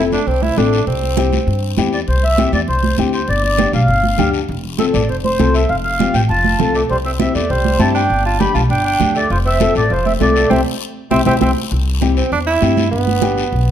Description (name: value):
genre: latin, cumbia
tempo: 199 BPM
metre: 4/4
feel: straight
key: C major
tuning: A4 = 440 Hz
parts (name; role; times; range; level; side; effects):
- warm tenor saxophone; second line; 0.0-1.7, 6.3-13.7 s; F3 to G4; -20 LUFS; right 4 dB; none
- nylon-string guitar; accompaniment; 0.0-13.4 s; B3 to A4; -20 LUFS; left 6 dB; none
- upright bass; bass; 0.0-13.7 s; F1 to G2; -18 LUFS; equal; none
- congas; percussion; 0.1-13.7 s; none; -21 LUFS; right 6 dB; none
- guiro; percussion; 0.1-13.7 s; none; -29 LUFS; left 9 dB; none
- mellow accordion; melody; 1.9-11.5 s; C5 to B5; -18 LUFS; equal; none
room: moderate large studio reverb, RT60 1.2 s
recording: dark, warm production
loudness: -13 LUFS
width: side -10 dB against mid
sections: 0.0-2.1 A section; 2.1-11.7 B section; 11.7-13.7 C section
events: tenor saxophone solo 0.0-2.1, 11.7-13.7; band accent 10.5-11.7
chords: 0.0 F; 0.9 C; 3.3 G7; 4.5 F; 6.9 C; 8.1 G; 9.3 F; 10.5 C; 12.9 G